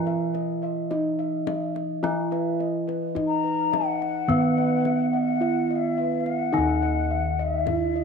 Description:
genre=Javanese gamelan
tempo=53 BPM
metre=4/4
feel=straight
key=Eb pelog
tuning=A4 = 440 Hz
part: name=gamelan-type bronze metallophone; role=melody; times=0.0-8.0 s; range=Cb4 to Fb4+35c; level=-29 LUFS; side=right 3 dB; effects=none
part: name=gamelan-type bronze metallophone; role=accompaniment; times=0.0-8.0 s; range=Eb3 to Cb4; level=-28 LUFS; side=equal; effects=none
part: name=gamelan-type bossed gongs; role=arpeggios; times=0.0-8.0 s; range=Cb5 to Fb5+35c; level=-34 LUFS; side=left 7 dB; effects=none
part: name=gamelan-type bronze metallophone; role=arpeggios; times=0.0-8.0 s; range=Cb5 to Fb5+35c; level=-33 LUFS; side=right 9 dB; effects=none
part: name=gamelan-type bossed gongs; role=bass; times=0.0-8.0 s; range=Eb2 to Cb5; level=-30 LUFS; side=left 1 dB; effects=none
part: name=kendang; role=percussion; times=0.1-7.9 s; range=none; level=-35 LUFS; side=left 9 dB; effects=none
part: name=mellow bansuri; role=second line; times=3.3-8.0 s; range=Fb5+33c to Bb5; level=-27 LUFS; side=left 10 dB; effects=slapback echo
room=moderate echo chamber reverb, RT60 1.3 s, small room ambience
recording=1960s-style stereo with parts hard left and right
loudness=-22 LUFS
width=side -6 dB against mid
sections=0.0-8.0 A section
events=none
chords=none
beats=0.90 | 2.03 3.15 4.28 5.41 | 6.53 7.66

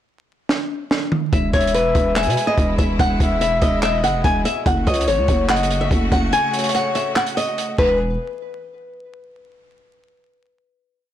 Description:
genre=hip hop, trap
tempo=144 BPM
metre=4/4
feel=half-time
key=E major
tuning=A4 = 440 Hz
part: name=compact cocktail drum kit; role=drums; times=0.5-7.9 s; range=crash cymbal, handclaps, hi-hat, kick drum, snare drum, toms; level=-21 LUFS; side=right 1 dB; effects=soft clipping on snare
part: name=flamenco guitar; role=melody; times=1.3-8.0 s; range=B4 to G#5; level=-20 LUFS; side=left 1 dB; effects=none
part: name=clear studio string section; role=sustained chords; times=1.3-8.0 s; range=B2 to G#4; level=-29 LUFS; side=equal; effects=none
part: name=growling 808-style bass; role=bass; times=1.3-8.2 s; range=E1 to B2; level=-21 LUFS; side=equal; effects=none
part: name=breathy flute-like synth lead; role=second line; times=1.5-8.0 s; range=B4 to G#5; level=-25 LUFS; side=left 2 dB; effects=chorus, ping-pong delay
room=light reverb, studio reverb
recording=blown-out, overdriven recording, vinyl crackle, overdrive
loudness=-16 LUFS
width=side -11 dB against mid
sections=0.0-1.3 pickup bar; 1.3-8.0 hook; 8.0-9.7 final hit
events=drum fill 0.5-1.3; kick muted 6.3-8.0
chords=0.0 N.C.; 1.3 E; 4.7 F#m; 7.8 E; 8.0 N.C.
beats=0.08 0.49 0.91 | 1.33 1.74 2.16 2.58 | 2.99 3.41 3.83 4.24 | 4.66 5.08 5.49 5.91 | 6.33 6.74 7.16 7.58 | 7.99

